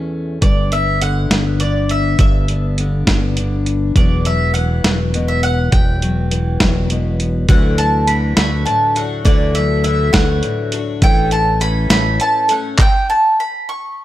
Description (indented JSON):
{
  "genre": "indie folk with a building arrangement",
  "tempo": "68 BPM (dotted quarters)",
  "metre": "6/8",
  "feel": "straight",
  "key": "D major",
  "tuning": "A4 = 439 Hz",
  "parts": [
    { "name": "fingerpicked steel-string acoustic guitar", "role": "accompaniment", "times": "0.0-12.8 s", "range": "D2 to E4", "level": "-22 LUFS", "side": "left 3 dB", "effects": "none" },
    { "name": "bowl-back mandolin", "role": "melody", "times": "0.4-14.0 s", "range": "D5 to C#6", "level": "-18 LUFS", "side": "right 1 dB", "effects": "none" },
    { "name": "fingered electric bass", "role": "bass", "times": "0.4-12.2 s", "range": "E1 to D2", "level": "-18 LUFS", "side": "equal", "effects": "none" },
    { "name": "dusty soul sampler-style drum kit", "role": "drums", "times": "0.4-12.9 s", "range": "handclaps, hi-hat, kick drum, snare drum", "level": "-15 LUFS", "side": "equal", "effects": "none" },
    { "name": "picked twelve-string acoustic guitar", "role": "accompaniment", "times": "7.5-12.8 s", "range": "A2 to A4", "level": "-24 LUFS", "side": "left 7 dB", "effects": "none" }
  ],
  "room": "studio ambience",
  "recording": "none",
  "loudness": "-13 LUFS",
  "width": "side -14 dB against mid",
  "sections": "0.0-7.5 A section; 7.5-14.0 B section",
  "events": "none",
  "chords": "0.4 G; 4.0 Emadd9; 7.5 Dadd9; 11.0 A"
}